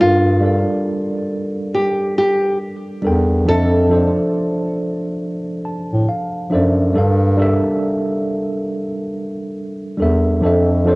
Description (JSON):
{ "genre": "lo-fi hip hop", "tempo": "69 BPM", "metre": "4/4", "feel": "swing 62% on 16ths", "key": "G dorian", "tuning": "A4 = 441 Hz", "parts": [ { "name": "nylon-string guitar", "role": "melody", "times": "0.0-4.6 s", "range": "F4 to A4", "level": "-18 LUFS", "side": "equal", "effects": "low-pass filter, cassette tape" }, { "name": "tine electric piano", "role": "accompaniment", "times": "0.0-11.0 s", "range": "F3 to A5", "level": "-19 LUFS", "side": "equal", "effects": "medium stereo tremolo, cassette tape, low-pass filter" }, { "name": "dark bass clarinet", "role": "bass", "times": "0.0-11.0 s", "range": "E2 to A2", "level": "-16 LUFS", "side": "equal", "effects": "none" } ], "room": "light reverb, studio reverb", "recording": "home recording on cassette, lossy compression artefacts", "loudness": "-15 LUFS", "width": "side -25 dB against mid", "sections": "0.0-11.0 A section", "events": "tine electric piano fill 5.2-7.0", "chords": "0.0 Gm7; 3.5 Dm9/F; 7.0 Gm7; 10.4 Dm9/F", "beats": "| 0.00 0.87 1.74 2.61 | 3.48 4.35 5.22 6.09 | 6.96 7.83 8.70 9.56 | 10.43" }